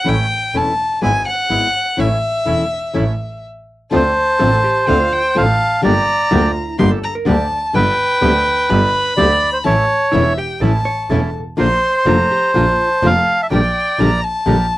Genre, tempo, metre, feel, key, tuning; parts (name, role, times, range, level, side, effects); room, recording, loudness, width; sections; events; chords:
tango; 125 BPM; 4/4; rubato; D minor from 3.9 s; A4 = 440 Hz
warm violin; second line; 0.0-14.8 s; E5 to C6; -20 LUFS; left 2 dB; cassette tape
nylon-string guitar; accompaniment; 0.0-14.6 s; D3 to G4; -18 LUFS; left 3 dB; cassette tape
bandoneon; stabs; 0.1-14.7 s; G#3 to Bb4; -28 LUFS; right 5 dB; cassette tape
clear double bass; bass; 0.1-14.7 s; E1 to D2; -19 LUFS; right 2 dB
bandoneon; melody; 4.0-14.2 s; B4 to F5; -15 LUFS; right 1 dB; cassette tape
vintage hollow-body jazz guitar; second line; 4.4-12.9 s; E4 to D5; -26 LUFS; right 1 dB; cassette tape
light reverb; home recording on cassette; -13 LUFS; side -17 dB against mid
0.0-3.9 A section; 3.9-14.8 B section
violin solo 0.0-3.9; stop 3.4-3.9
0.1 A; 1.0 E/G#; 2.0 A; 3.9 Dm7; 5.8 Gm; 7.7 Gadd9; 9.7 A; 11.6 Bb; 13.5 Gm/Bb